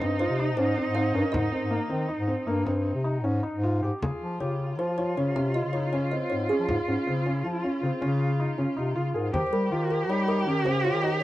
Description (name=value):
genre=contemporary instrumental, chamber music in an uneven meter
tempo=159 BPM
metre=7/4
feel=straight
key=unclear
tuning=A4 = 439 Hz
part: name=kalimba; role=melody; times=0.0-11.2 s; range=Ab4 to F5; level=-31 LUFS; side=equal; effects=none
part: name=warm cello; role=second line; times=0.0-11.2 s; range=Eb4 to G4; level=-32 LUFS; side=right 2 dB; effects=none
part: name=felt-muted upright piano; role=arpeggios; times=0.0-11.2 s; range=Bb3 to Ab4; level=-30 LUFS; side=equal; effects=none
part: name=mellow bass clarinet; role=bass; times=0.0-11.2 s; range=G2 to G3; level=-28 LUFS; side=left 1 dB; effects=none
part: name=frame drum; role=percussion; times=0.0-10.8 s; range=none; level=-35 LUFS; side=left 1 dB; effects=none
part: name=worn celesta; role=texture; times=1.2-8.6 s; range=F4 to Bb4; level=-41 LUFS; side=left 2 dB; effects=none
room=light reverb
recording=worn, warbling old tape, cassette tape, warbly pitch drift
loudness=-24 LUFS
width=side -15 dB against mid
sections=0.0-4.0 A section; 4.0-11.2 B section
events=none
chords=0.0 Abmaj7; 4.0 Db; 9.3 Eb7